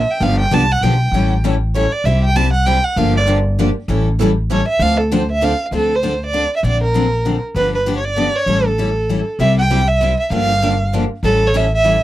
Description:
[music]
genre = acoustic string swing (jazz manouche)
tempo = 196 BPM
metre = 3/4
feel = swing 58% on 8ths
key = D minor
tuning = A4 = 437 Hz
[part]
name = warm violin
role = melody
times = 0.0-12.0 s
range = A4 to A5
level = -17 LUFS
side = right 2 dB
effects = none
[part]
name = upright bass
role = bass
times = 0.0-12.0 s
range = G1 to D2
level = -17 LUFS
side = equal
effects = none
[part]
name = picked acoustic archtop guitar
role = accompaniment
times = 0.2-5.5, 9.4-12.0 s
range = C3 to A4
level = -25 LUFS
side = right 8 dB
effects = none
[part]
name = picked steel-string acoustic guitar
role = accompaniment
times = 0.2-12.0 s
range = C3 to A4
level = -20 LUFS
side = left 4 dB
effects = none
[sound]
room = little or no reverb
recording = dry, close 1970s-style studio recording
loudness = -14 LUFS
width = side -14 dB against mid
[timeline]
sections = 0.0-5.7 A section; 5.7-12.0 B section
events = violin solo 0.0-5.7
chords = 0.2 G7; 1.1 A7; 2.0 C; 3.0 Gm7; 3.9 A7; 4.8 Dm7; 6.6 Bbadd9; 7.5 G7; 8.5 A7; 9.4 C; 10.3 Gm7; 11.2 A7

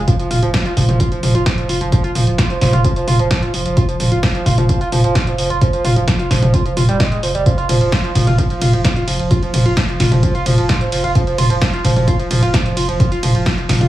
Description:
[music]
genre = driving peak-time techno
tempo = 130 BPM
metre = 4/4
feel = straight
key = unclear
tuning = A4 = 440 Hz
[part]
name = warm sub bass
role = bass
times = 0.0-13.9 s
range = F1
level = -22 LUFS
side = equal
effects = overdrive, sidechain pumping, low-pass filter
[part]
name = overdriven synth lead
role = riff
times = 0.1-13.9 s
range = F3 to F4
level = -19 LUFS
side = right 1 dB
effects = tube saturation, cassette tape, sidechain pumping, tape echo
[part]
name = electronic kick drum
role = drums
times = 0.1-13.8 s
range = none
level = -17 LUFS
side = equal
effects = none
[part]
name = punchy analog drum machine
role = drums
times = 0.1-13.9 s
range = hi-hat, ride cymbal, snare drum, toms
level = -17 LUFS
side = equal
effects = sidechain pumping on hats, sidechain pumping on toms, sidechain pumping on cymbals
[sound]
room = light reverb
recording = small room ambience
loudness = -13 LUFS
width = side -14 dB against mid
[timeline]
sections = 0.0-13.9 A section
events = none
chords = none

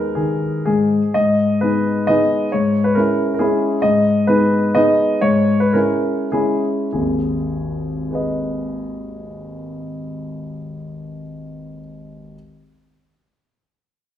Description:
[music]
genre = classical, romantic triple-time dance for piano with dotted rhythms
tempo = 94-143 BPM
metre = 3/4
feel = rubato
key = G# minor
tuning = A4 = 440 Hz
[part]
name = warm grand piano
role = solo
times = 0.0-12.4 s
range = G#1 to D#5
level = -17 LUFS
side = left 1 dB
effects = none
[sound]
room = wet recital hall reverb, RT60 1.3 s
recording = minimal, uncompressed stereo recording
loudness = -15 LUFS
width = side -11 dB against mid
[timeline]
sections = 0.0-1.2 A section; 1.2-6.9 B section; 6.9-10.3 C section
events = slowing down 3.2-6.9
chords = 0.0 G#m; 2.5 C#m/G#; 3.8 G#m; 5.2 C#m/G#; 6.9 G#m

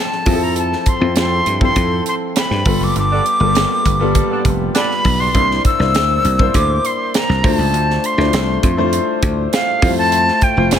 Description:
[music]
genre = polished 1980s jazz-funk pop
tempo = 100 BPM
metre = 4/4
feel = straight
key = F major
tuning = A4 = 440 Hz
[part]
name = breathy jazz flute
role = melody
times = 0.0-10.8 s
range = F5 to E6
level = -18 LUFS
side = equal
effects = none
[part]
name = warm concert grand piano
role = accompaniment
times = 0.0-10.8 s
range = F3 to C5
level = -19 LUFS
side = left 3 dB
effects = lush chorus
[part]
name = crisp fusion drum kit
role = drums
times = 0.1-10.8 s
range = hi-hat, kick drum, snare drum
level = -19 LUFS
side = right 1 dB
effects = none
[part]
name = dry thumbed slap bass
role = bass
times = 0.3-10.8 s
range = F1 to G2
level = -18 LUFS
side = equal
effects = none
[part]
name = mellow horn section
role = second line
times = 3.1-4.9 s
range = B3 to D5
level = -25 LUFS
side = right 3 dB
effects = ping-pong delay
[sound]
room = light reverb, studio reverb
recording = none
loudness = -13 LUFS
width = side -9 dB against mid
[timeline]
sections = 0.0-10.8 A section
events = band accent 3.0-5.3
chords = 0.3 Fmaj7; 2.7 G9; 5.3 C9; 7.4 Dm7; 9.8 Fmaj7

